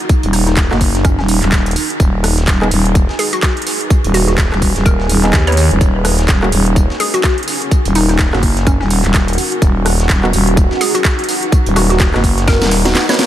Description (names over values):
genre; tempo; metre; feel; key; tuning
bass house; 126 BPM; 4/4; swing 59% on 16ths; unclear; A4 = 440 Hz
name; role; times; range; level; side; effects
house drum kit; drums; 0.0-13.3 s; handclaps, hi-hat, rim click, snare drum; -18 LUFS; right 1 dB; none
granular cloud pad; texture; 0.0-13.3 s; Db4 to Ab5; -22 LUFS; right 2 dB; built-in reverb, wide subtle chorus, sidechain pumping
breakbeat sampler-style drum kit; drums; 0.1-13.3 s; hi-hat, snare drum, tambourine; -27 LUFS; right 1 dB; sidechain pumping on perc, high-pass filter on perc, sidechain pumping on hats, high-pass filter on hats, high-pass filter on snare
electronic kick drum; drums; 0.1-12.6 s; none; -13 LUFS; equal; none
growling FM bass; bass; 0.2-12.9 s; Eb1 to Eb2; -14 LUFS; equal; overdrive, sidechain pumping
hollow square pluck; melody; 0.3-13.3 s; Db4 to Db5; -21 LUFS; left 1 dB; chorus, analog delay
percussive organ stab; stabs; 0.7-13.1 s; Bb3 to Cb5; -25 LUFS; right 2 dB; none
room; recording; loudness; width
light reverb; none; -11 LUFS; side -12 dB against mid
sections
0.0-13.3 A section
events
drum fill 12.5-13.3; kick drops out 13.0-13.3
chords
0.0 Ebm; 2.0 Abm/Eb; 5.8 Gb/Eb; 9.6 B/D#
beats
| 0.10 0.57 1.05 1.52 | 2.00 2.48 2.95 3.43 | 3.90 4.38 4.86 5.33 | 5.81 6.29 6.76 7.24 | 7.71 8.19 8.67 9.14 | 9.62 10.10 10.57 11.05 | 11.52 12.00 12.48 12.95